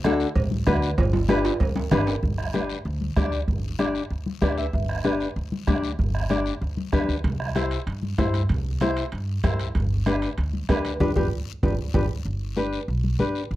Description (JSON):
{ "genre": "latin, cumbia", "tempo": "192 BPM", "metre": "4/4", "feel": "straight", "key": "G major", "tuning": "A4 = 440 Hz", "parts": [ { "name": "nylon-string guitar", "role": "accompaniment", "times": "0.0-13.4 s", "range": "D4 to E5", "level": "-25 LUFS", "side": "left 2 dB", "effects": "none" }, { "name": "upright bass", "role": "bass", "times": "0.0-13.6 s", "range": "G1 to G2", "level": "-27 LUFS", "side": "equal", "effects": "none" }, { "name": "bombo", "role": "percussion", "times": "0.0-12.0 s", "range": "none", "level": "-27 LUFS", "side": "right 1 dB", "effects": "none" }, { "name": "congas", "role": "percussion", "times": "0.0-13.4 s", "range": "none", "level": "-29 LUFS", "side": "left 3 dB", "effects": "none" }, { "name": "guiro", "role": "percussion", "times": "0.0-13.6 s", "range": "none", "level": "-42 LUFS", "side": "left 11 dB", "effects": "none" }, { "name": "cowbell and timbales", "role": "percussion", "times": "0.4-2.1, 7.2-12.0 s", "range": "none", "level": "-32 LUFS", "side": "right 5 dB", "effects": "none" } ], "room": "light reverb", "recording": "dry, close 1970s-style studio recording", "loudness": "-22 LUFS", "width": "side -15 dB against mid", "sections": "0.0-2.2 A section; 2.2-12.3 A section; 12.3-13.6 B section", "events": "drum fill 1.0-2.2, 11.3-12.3; nylon-string guitar fill 4.3-4.7; band accent 11.0-12.3", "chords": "0.0 D; 1.0 G; 7.2 C; 9.8 G" }